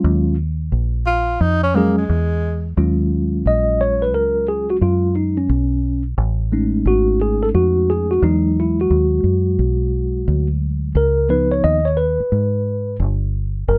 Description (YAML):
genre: hip hop, jazz-hop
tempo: 88 BPM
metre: 4/4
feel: swing 64% on 16ths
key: Eb minor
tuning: A4 = 440 Hz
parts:
  - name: mellow tine electric piano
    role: accompaniment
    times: 0.0-13.8 s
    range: F3 to Eb5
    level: -20 LUFS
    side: equal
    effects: none
  - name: deep dub fingered electric bass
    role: bass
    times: 0.0-13.8 s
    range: Gb1 to Ab2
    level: -21 LUFS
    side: equal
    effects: none
  - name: breathy tenor saxophone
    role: second line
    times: 1.1-2.7 s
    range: Ab3 to F4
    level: -23 LUFS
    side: equal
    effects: none
room: little or no reverb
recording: none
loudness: -18 LUFS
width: mono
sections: 0.0-2.8 A section; 2.8-13.8 B section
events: tine electric piano solo 2.8-13.8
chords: 0.0 Ebm11; 5.5 B13; 8.2 Emaj9; 11.0 Db9